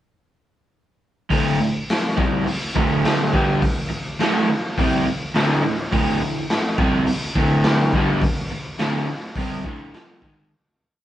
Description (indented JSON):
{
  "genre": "garage rock duo or trio",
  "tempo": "105 BPM",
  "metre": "4/4",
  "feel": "straight",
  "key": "unclear",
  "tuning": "A4 = 435 Hz",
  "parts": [
    { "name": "crunchy overdriven guitar", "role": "riff", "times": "1.3-10.5 s", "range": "D2 to C4", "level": "-20 LUFS", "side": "equal", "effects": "none" },
    { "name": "raw garage drum kit", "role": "drums", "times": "1.3-10.4 s", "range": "hi-hat, kick drum, snare drum", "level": "-22 LUFS", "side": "equal", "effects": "vintage 12-bit sampler grit" }
  ],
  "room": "wet studio reverb, RT60 0.6 s",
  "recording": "band playing live in one room, cassette tape",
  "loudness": "-18 LUFS",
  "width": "side -12 dB against mid",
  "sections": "1.3-10.5 riff",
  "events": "fade-out 8.2-10.5",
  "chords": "1.3 D5"
}